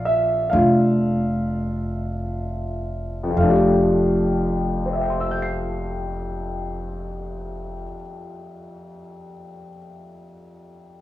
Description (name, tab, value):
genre	jazz ballad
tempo	40-45 BPM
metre	4/4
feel	swing 66% on 8ths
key	F major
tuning	A4 = 438 Hz
part	warm baby grand piano	accompaniment	0.0-11.0 s	F2 to C7	-23 LUFS	left 1 dB	cassette tape
part	upright bass	bass	0.0-7.8 s	F1 to Bb1	-24 LUFS	equal	none
room	light reverb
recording	home recording on cassette, small room reverb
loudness	-19 LUFS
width	side -14 dB against mid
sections	0.0-3.4 A section; 3.4-9.3 B section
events	slowing down 0.0-3.4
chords	0.0 Bbmaj7; 3.4 F69